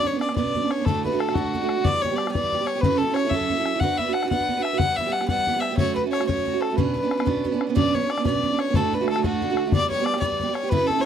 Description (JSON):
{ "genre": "celtic folk, Celtic jig", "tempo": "122 BPM (dotted quarters)", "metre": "6/8", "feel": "straight", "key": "B minor", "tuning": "A4 = 439 Hz", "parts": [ { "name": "warm fiddle", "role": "melody", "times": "0.0-11.1 s", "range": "F#4 to F#5", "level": "-24 LUFS", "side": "left 3 dB", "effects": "none" }, { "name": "picked steel-string acoustic guitar", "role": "accompaniment", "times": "0.0-11.1 s", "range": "D2 to B4", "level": "-24 LUFS", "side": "right 8 dB", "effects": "none" }, { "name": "bodhran", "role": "percussion", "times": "0.0-10.9 s", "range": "none", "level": "-26 LUFS", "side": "left 4 dB", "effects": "none" } ], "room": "studio ambience", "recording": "dry, close 1970s-style studio recording", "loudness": "-20 LUFS", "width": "side -8 dB against mid", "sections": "0.0-7.8 A section; 7.8-11.1 A section", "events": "none", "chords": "0.0 Bmadd9; 0.9 D; 1.8 Em; 2.8 F#m7; 3.8 Bm; 4.8 Em; 5.8 F#m; 6.8 Bmadd9; 8.7 D; 9.7 Em" }